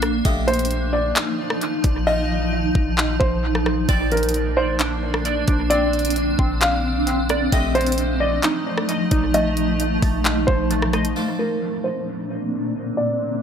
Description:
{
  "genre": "hip hop, atmospheric cloud-rap",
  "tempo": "132 BPM",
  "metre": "4/4",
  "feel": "half-time",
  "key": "Bb major",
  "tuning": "A4 = 439 Hz",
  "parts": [
    { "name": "granular cloud pad", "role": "sustained chords", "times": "0.0-13.4 s", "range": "Bb2 to Eb4", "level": "-23 LUFS", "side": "equal", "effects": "built-in reverb, sidechain pumping, low-pass filter" },
    { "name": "warm 808-style bass", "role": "bass", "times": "0.0-11.1 s", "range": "Bb1", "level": "-24 LUFS", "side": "equal", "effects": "none" },
    { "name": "trap drum kit", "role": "drums", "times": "0.0-11.2 s", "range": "handclaps, hi-hat, kick drum, rim click", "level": "-24 LUFS", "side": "equal", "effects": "dub echo" },
    { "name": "harpsichord", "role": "texture", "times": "0.0-13.4 s", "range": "A3 to A5", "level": "-33 LUFS", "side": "left 1 dB", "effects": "none" },
    { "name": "felt-muted upright piano", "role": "melody", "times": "0.5-13.4 s", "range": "Bb4 to F5", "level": "-25 LUFS", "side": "equal", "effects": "low-pass filter, dub echo" },
    { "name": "glassy wavetable pluck", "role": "arpeggios", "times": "3.9-11.2 s", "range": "A3 to Eb5", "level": "-28 LUFS", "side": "right 3 dB", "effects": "chorus, low-pass filter, dub echo" }
  ],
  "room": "light reverb, digital ambience",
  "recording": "echo-heavy mix",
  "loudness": "-18 LUFS",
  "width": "side -8 dB against mid",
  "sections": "0.0-11.2 A section; 11.2-13.4 B section",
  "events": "hi-hats muted 2.1-3.9; filter sweep 11.2-13.4",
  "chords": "0.3 F9/Bb; 3.9 Bbmaj9; 7.5 F9/Bb; 11.2 Bbmaj9",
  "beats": "| 0.25 0.71 1.16 1.61 | 2.07 2.52 2.98 3.43 | 3.89 4.34 4.80 5.25 | 5.71 6.16 6.62 7.07 | 7.52 7.98 8.43 8.89 | 9.34 9.80 10.25 10.71 | 11.16 11.62 12.07 12.52 | 12.98"
}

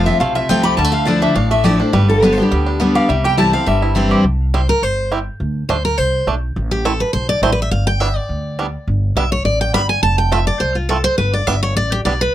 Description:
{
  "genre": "bluegrass",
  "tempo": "208 BPM",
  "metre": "4/4",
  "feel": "swing 53% on 8ths",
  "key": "unclear",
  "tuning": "A4 = 439 Hz",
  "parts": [
    { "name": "picked steel-string acoustic guitar", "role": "melody", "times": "0.0-4.2 s", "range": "G4 to B5", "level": "-18 LUFS", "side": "left 1 dB", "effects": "none" },
    { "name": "lap resonator guitar", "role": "second line", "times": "0.0-4.2 s", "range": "G4 to B5", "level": "-24 LUFS", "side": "left 4 dB", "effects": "tape echo" },
    { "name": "picked steel-string acoustic guitar", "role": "accompaniment", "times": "0.0-12.3 s", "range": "F2 to B5", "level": "-17 LUFS", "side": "left 1 dB", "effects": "none" },
    { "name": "bluegrass banjo", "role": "arpeggios", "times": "0.0-12.1 s", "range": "G3 to G4", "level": "-21 LUFS", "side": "right 5 dB", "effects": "none" },
    { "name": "upright bass", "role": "bass", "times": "0.0-12.3 s", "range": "F1 to D2", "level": "-19 LUFS", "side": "equal", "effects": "none" }
  ],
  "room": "little or no reverb",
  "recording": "dry, close 1970s-style studio recording",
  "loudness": "-14 LUFS",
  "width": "side -12 dB against mid",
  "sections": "0.0-4.2 A section; 4.2-12.3 B section",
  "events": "steel-string acoustic guitar solo 4.2-12.3",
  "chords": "0.0 F; 0.8 Dmadd9; 1.9 G; 3.1 C; 4.2 C5; 5.4 D5; 6.6 Am; 7.7 G; 10.0 F; 11.2 G",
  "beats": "0.21 0.49 | 0.78 1.07 1.36 1.65 | 1.94 2.23 2.51 2.80 | 3.09 3.38 3.67 3.96 | 4.25 4.54 4.82 5.11 | 5.40 5.69 5.98 6.27 | 6.56 6.85 7.14 7.43 | 7.72 8.01 8.29 8.58 | 8.87 9.16 9.45 9.74 | 10.03 10.32 10.61 10.90 | 11.19 11.47 11.76 12.05"
}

